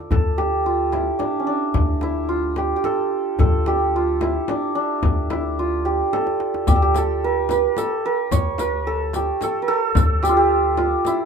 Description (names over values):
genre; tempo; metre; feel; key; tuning
Persian modal ensemble; 110 BPM; 3/4; straight; D avaz esfahan; A4 = 440 Hz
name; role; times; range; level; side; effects
santur; melody; 0.0-11.3 s; C#4 to D5; -20 LUFS; right 2 dB; none
upright bass; bass; 0.1-10.9 s; D2; -24 LUFS; left 1 dB; none
frame drum; percussion; 0.1-11.2 s; none; -27 LUFS; left 5 dB; none
tombak; percussion; 0.1-11.2 s; none; -26 LUFS; equal; none
riq; percussion; 6.7-11.2 s; none; -33 LUFS; left 3 dB; none
room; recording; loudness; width
moderate small room reverb, RT60 0.5 s; minimal, uncompressed stereo recording; -18 LUFS; side -6 dB against mid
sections
0.1-11.3 A section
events
drum fill 6.1-6.7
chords
none